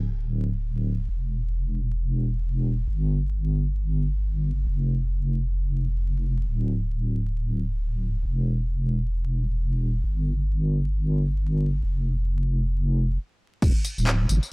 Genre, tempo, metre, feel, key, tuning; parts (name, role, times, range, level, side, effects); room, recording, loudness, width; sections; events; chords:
UK garage, two-step garage; free time; D minor; A4 = 445 Hz
deep soft wobble bass; bass; 0.0-14.4 s; D1 to G1; -23 LUFS; equal; chorus, tube saturation
electronic kick drum; drums; 13.6-13.7 s; -20 LUFS; equal; overdrive
house drum kit; drums; 13.6-14.5 s; crash cymbal, handclaps, hi-hat, tambourine; -29 LUFS; equal; overdrive
digital ambience; dry, gritty hardware recording, transformer saturation, vinyl crackle; -23 LUFS; side -35 dB against mid
0.0-13.6 A section
stop 13.2-13.6